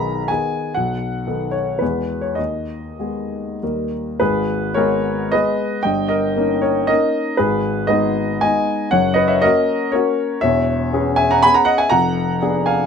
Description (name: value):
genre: classical, romantic triple-time dance for piano with dotted rhythms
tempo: 93-130 BPM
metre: 3/4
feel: rubato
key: G# minor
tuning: A4 = 440 Hz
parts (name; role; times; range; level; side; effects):
- warm grand piano; solo; 0.0-12.9 s; E1 to B5; -16 LUFS; left 1 dB; none
room: little or no reverb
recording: close, detailed microphones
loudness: -16 LUFS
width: side -6 dB against mid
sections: 0.0-4.2 A section; 4.2-12.9 B section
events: none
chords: 0.0 G#m/B; 0.8 B7; 1.8 E; 2.4 G#m/D#; 3.6 D#; 4.2 G#m; 5.8 D#7/G; 7.4 G#m; 8.9 F#; 10.4 C#m7/E; 11.9 Fdim7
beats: 0.29 | 0.76 1.26 1.81 | 2.38 2.99 3.62 | 4.21 4.76 5.33 | 5.84 6.36 6.90 | 7.39 7.89 8.44 | 8.92 9.43 9.94 | 10.43 10.92 11.43 | 11.90 12.40